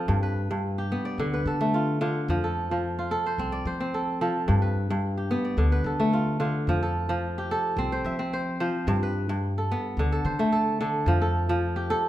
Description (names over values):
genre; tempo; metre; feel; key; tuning
west african traditional; 109 BPM; 4/4; straight; F lydian; A4 = 440 Hz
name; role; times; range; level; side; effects
kora; arpeggios; 0.0-12.1 s; G2 to E5; -25 LUFS; equal; none
upright bass; bass; 0.1-11.9 s; C2 to F3; -29 LUFS; equal; none
room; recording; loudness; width
moderate recital hall reverb, RT60 1.7 s; minimal, uncompressed stereo recording; -24 LUFS; side -13 dB against mid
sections
0.0-6.7 A section; 6.7-12.1 B section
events
none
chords
0.1 G; 1.2 Dm; 2.3 F; 4.5 G; 5.6 Dm; 6.7 F; 8.9 G; 10.0 D5; 11.1 F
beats
| 0.08 0.63 1.18 1.73 | 2.28 2.83 3.38 3.93 | 4.48 5.03 5.58 6.13 | 6.68 7.23 7.78 8.33 | 8.87 9.42 9.97 10.52 | 11.07 11.62